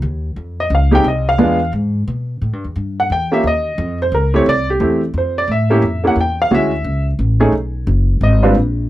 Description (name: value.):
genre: jazz piano trio.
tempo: 176 BPM.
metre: 3/4.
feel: swing 64% on 8ths.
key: unclear.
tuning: A4 = 439 Hz.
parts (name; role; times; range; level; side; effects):
upright bass; bass; 0.0-8.9 s; F#1 to B2; -17 LUFS; equal; none.
clear upright piano; melody; 0.6-8.6 s; G3 to G5; -15 LUFS; right 1 dB; none.
room: little or no reverb.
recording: dry, close 1970s-style studio recording.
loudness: -13 LUFS.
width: side -15 dB against mid.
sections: 0.0-2.4 A section; 2.4-8.9 A section.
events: upright piano solo 0.0-8.9.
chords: 0.4 F7(no3); 1.4 E(b9); 2.4 N.C.; 3.4 D#7sus2; 4.5 Fmaj7sus2; 5.5 A7b9; 6.5 Dmaj7sus2; 7.5 B5.